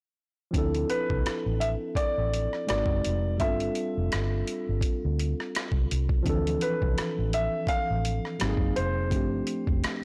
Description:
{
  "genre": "R&B, neo-soul",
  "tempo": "84 BPM",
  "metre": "4/4",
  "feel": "swing 55% on 16ths",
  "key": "D dorian",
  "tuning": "A4 = 440 Hz",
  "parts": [
    { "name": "tine electric piano", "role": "accompaniment", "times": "0.5-10.0 s", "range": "E3 to A#4", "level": "-34 LUFS", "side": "equal", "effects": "overdrive" },
    { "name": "vintage muted fingered electric bass", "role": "bass", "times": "0.5-9.9 s", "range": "F1 to D2", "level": "-31 LUFS", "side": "equal", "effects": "transformer saturation" },
    { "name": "boom bap sampler-style drum kit", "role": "drums", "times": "0.5-10.0 s", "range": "hi-hat, kick drum, rim click", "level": "-33 LUFS", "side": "equal", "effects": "none" },
    { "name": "warm grand piano", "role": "melody", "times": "0.9-10.0 s", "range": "B4 to F5", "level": "-33 LUFS", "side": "equal", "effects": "none" }
  ],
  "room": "light reverb, digital ambience",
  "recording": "blown-out, overdriven recording, overdrive",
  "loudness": "-28 LUFS",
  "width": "mono",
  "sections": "0.5-10.0 A section",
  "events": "none",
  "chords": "0.5 Dm9; 2.7 G#9; 3.4 G9sus4; 6.3 Dm9; 8.4 G#9; 9.1 G9sus4"
}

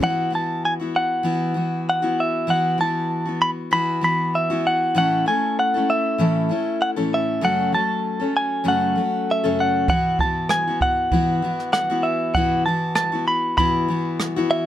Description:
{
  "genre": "acoustic pop",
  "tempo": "97 BPM",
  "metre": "4/4",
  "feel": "swing 55% on 16ths",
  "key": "unclear",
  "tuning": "A4 = 440 Hz",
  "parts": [
    { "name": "direct-recorded clean electric guitar", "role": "melody", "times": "0.0-14.7 s", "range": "E5 to B5", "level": "-21 LUFS", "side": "right 1 dB", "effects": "none" },
    { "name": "picked steel-string acoustic guitar", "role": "accompaniment", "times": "0.0-14.7 s", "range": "F#2 to A4", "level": "-23 LUFS", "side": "left 2 dB", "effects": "none" },
    { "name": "jazz brush drum kit", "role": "drums", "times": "9.9-14.4 s", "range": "kick drum, rim click", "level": "-26 LUFS", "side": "right 2 dB", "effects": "none" }
  ],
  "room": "light reverb",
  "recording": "none",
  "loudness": "-18 LUFS",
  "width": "side -12 dB against mid",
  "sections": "0.0-14.7 A section",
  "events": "none",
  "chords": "0.0 Esus2; 5.0 A; 7.4 F#m; 9.9 Esus2"
}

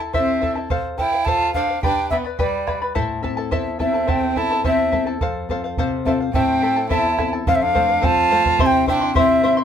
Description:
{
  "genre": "andean folk, Andean ensemble",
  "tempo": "106 BPM",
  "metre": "2/4",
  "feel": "straight",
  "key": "A minor",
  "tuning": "A4 = 442 Hz",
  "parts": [
    { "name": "charango", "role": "accompaniment", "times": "0.0-9.6 s", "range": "E4 to C6", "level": "-24 LUFS", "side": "left 3 dB", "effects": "none" },
    { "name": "large quena", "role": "melody", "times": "0.1-9.6 s", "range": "D5 to A5", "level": "-19 LUFS", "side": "equal", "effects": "none" },
    { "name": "bombo", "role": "percussion", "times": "0.1-9.3 s", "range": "none", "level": "-26 LUFS", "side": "right 2 dB", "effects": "none" },
    { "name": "clear violin", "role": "second line", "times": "0.2-9.6 s", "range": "G3 to F4", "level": "-24 LUFS", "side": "right 2 dB", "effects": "none" },
    { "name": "nylon-string guitar", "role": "accompaniment", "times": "3.0-9.6 s", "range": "E2 to A4", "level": "-26 LUFS", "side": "left 6 dB", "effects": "none" }
  ],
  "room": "moderate small room reverb, RT60 0.5 s",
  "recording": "minimal, uncompressed stereo recording",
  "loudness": "-17 LUFS",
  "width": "side -8 dB against mid",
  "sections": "0.0-7.5 A section; 7.5-9.6 B section",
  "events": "none",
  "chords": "0.0 Am; 0.7 F; 1.8 G; 2.9 Am; 5.2 F; 6.3 Am; 7.5 F; 8.6 C"
}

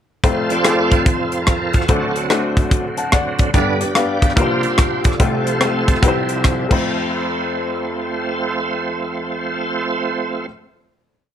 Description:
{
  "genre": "uptempo gospel",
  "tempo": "145 BPM",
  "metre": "4/4",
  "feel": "swing 64% on 8ths",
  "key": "F major",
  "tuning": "A4 = 435 Hz",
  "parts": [
    { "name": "bright upright piano", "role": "accompaniment", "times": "0.2-10.5 s", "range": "F1 to A5", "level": "-21 LUFS", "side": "left 4 dB", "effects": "none" },
    { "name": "bright tonewheel organ", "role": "sustained chords", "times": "0.2-10.5 s", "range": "G2 to F5", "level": "-20 LUFS", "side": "right 3 dB", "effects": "slow rotary speaker, chorus vibrato" },
    { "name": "tight funk drum kit", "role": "drums", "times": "0.2-6.8 s", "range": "crash cymbal, hi-hat, kick drum, rim click", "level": "-17 LUFS", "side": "equal", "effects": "none" }
  ],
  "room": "moderate large studio reverb, RT60 0.8 s, studio ambience",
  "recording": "none",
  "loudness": "-16 LUFS",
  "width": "side -9 dB against mid",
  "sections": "0.2-6.9 breakdown; 6.9-10.2 final hit",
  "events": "tonewheel organ solo 0.2-6.9",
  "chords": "0.2 F; 1.9 D7; 3.5 G; 4.4 C9sus4; 5.2 F/C; 6.0 C; 6.6 F"
}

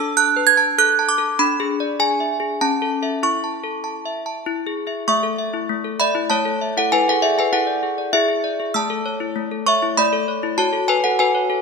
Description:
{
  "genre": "classical, lullaby for handbells",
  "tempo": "98 BPM",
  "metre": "3/4",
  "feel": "straight",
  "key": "A major",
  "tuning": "A4 = 440 Hz",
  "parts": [
    { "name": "desk bells", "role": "solo", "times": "0.0-11.6 s", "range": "A3 to G#6", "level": "-17 LUFS", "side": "equal", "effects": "none" }
  ],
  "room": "moderate concert hall reverb, RT60 2.5 s",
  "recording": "minimal, uncompressed stereo recording",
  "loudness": "-17 LUFS",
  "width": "side -4 dB against mid",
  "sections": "0.0-5.1 A section; 5.1-11.6 B section",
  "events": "none",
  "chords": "0.0 Bm7/D; 1.4 E7/D; 2.6 A/C#; 3.2 A/E; 4.5 E; 5.1 A; 6.9 E7; 8.7 A; 10.6 F#m"
}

